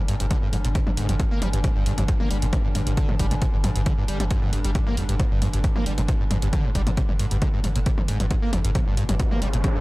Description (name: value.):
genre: driving peak-time techno.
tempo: 135 BPM.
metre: 4/4.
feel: straight.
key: G minor.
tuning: A4 = 440 Hz.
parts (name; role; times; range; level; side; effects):
warm sub bass; bass; 0.0-9.6 s; G1; -26 LUFS; equal; overdrive, sidechain pumping, low-pass filter.
metallic inharmonic drone; drone; 0.0-9.8 s; G2 to D3; -33 LUFS; equal; chorus, built-in reverb, sidechain pumping.
screaming distorted acid line; riff; 0.1-9.8 s; F2 to Bb3; -27 LUFS; equal; distortion, ensemble chorus, sidechain pumping, analog delay.
techno drum kit; drums; 0.1-9.7 s; hi-hat, toms; -31 LUFS; equal; none.
electronic kick drum; drums; 0.3-9.7 s; none; -24 LUFS; equal; none.
riser; sound effects; 8.9-9.8 s; none; -33 LUFS; equal; none.
room: little or no reverb.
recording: dry, gritty hardware recording.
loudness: -20 LUFS.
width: side -20 dB against mid.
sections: 0.0-9.8 A section.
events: riser 8.9-9.8.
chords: 0.0 G5.